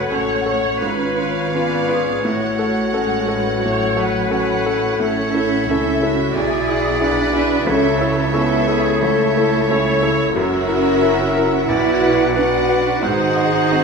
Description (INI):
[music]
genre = classical, romantic movement for piano and orchestra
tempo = 89 BPM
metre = 4/4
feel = uneven beats, rubato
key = F# minor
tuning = A4 = 439 Hz
[part]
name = bright concert grand piano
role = melody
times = 0.0-13.8 s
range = B1 to D#5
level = -20 LUFS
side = left 1 dB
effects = none
[part]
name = rich chamber violin section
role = melody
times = 0.0-13.8 s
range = C#5 to G#5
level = -31 LUFS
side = left 2 dB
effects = none
[part]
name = bright large flute ensemble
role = second line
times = 0.0-13.8 s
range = E5 to F#5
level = -29 LUFS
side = left 1 dB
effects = none
[part]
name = clear oboe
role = second line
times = 0.0-13.8 s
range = B#4 to E5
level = -26 LUFS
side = right 1 dB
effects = none
[part]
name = warm chamber violin section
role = second line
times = 0.0-13.8 s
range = A#4 to E5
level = -28 LUFS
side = left 3 dB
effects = none
[part]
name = warm clarinet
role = second line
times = 0.0-13.8 s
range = G#4 to B4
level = -28 LUFS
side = left 2 dB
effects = none
[part]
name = clear chamber viola section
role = accompaniment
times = 0.0-13.8 s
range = F#4 to C#5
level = -24 LUFS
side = right 2 dB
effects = none
[part]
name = mellow French horn section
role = sustained chords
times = 0.0-13.8 s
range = E#4 to E5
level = -24 LUFS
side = left 5 dB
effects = none
[part]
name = warm chamber cello section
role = bass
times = 0.0-13.8 s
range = F#3 to E4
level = -23 LUFS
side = right 5 dB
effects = none
[part]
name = warm chamber double bass section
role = bass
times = 0.0-13.8 s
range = F#1 to C#2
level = -27 LUFS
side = right 4 dB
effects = none
[sound]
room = wet scoring stage reverb, RT60 1.7 s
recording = minimal, uncompressed stereo recording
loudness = -15 LUFS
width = side -5 dB against mid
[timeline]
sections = 0.0-13.8 A section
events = none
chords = 0.0 F#m; 0.8 C#7/G#; 2.2 F#m/A; 5.0 A; 6.4 E7/B; 7.7 A/C#; 10.4 F#7; 11.7 Bm; 13.0 G#7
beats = 0.12 0.83 1.54 | 2.24 2.94 3.64 4.32 | 5.00 5.69 6.36 7.02 | 7.68 8.35 9.02 9.71 | 10.36 11.02 11.69 12.37 | 13.04 13.71